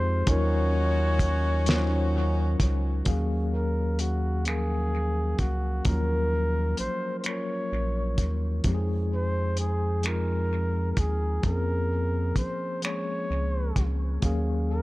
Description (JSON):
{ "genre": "slow six-eight R&B", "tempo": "43 BPM (dotted quarters)", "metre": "6/8", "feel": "straight", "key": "Eb dorian", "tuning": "A4 = 440 Hz", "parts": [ { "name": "breathy flugelhorn", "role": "melody", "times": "0.0-14.8 s", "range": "Gb4 to Db5", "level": "-32 LUFS", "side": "equal", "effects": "dub echo" }, { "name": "mellow tine electric piano", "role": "accompaniment", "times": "0.0-14.8 s", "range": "F3 to F5", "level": "-31 LUFS", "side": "left 2 dB", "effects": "fast stereo tremolo, dub echo" }, { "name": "rubbery square bass", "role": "bass", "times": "0.0-14.8 s", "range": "Bb1 to F2", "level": "-26 LUFS", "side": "equal", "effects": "none" }, { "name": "clear horn section", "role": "stabs", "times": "0.3-2.6 s", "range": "Db4 to Gb4", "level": "-36 LUFS", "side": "right 2 dB", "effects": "dub echo" }, { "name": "cloth-damped thuddy drum kit", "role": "drums", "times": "0.3-14.4 s", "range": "finger snaps, hi-hat, kick drum, snare drum", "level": "-28 LUFS", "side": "equal", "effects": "vintage 12-bit sampler grit" } ], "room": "studio ambience", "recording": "echo-heavy mix", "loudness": "-24 LUFS", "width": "side -19 dB against mid", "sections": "0.0-3.1 A section; 3.1-14.8 B section", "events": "none", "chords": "0.3 Ebm7; 3.1 Ebm11; 8.6 Fm7; 11.4 Bbm9; 14.2 Ebm11" }